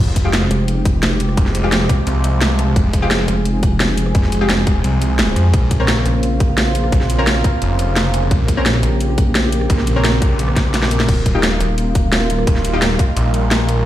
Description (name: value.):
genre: dark technical drum and bass.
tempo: 173 BPM.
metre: 4/4.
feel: straight.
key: F minor.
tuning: A4 = 440 Hz.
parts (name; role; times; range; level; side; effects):
sweeping resonant pad; sustained chords; 0.0-13.9 s; Db3 to Ab4; -21 LUFS; right 1 dB; wide subtle chorus, sidechain pumping.
snarling distorted saw bass; bass; 0.0-13.8 s; Eb1 to F2; -18 LUFS; equal; distortion, tube saturation, sidechain pumping.
orchestra-hit-like synth stab; stabs; 0.2-12.8 s; Ab3 to Bb4; -25 LUFS; left 2 dB; built-in reverb, dub echo.
drum and bass drum kit; drums; 0.2-13.8 s; crash cymbal, hi-hat, rim click, snare drum; -20 LUFS; equal; overdrive.
electronic kick drum; drums; 0.2-13.1 s; none; -15 LUFS; equal; overdrive.
vowel-sweep wobble bass; bass; 0.5-12.5 s; Eb1 to Bb1; -18 LUFS; equal; chorus.
room: light reverb, digital ambience.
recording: played on a big sound system in a bare room, stone room reverb.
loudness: -13 LUFS.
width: side -13 dB against mid.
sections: 0.0-13.9 A section.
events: drop 0.0-13.9; drum fill 10.6-11.1.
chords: 0.0 Fmadd9; 5.5 Bbmadd9; 11.1 Ebadd9.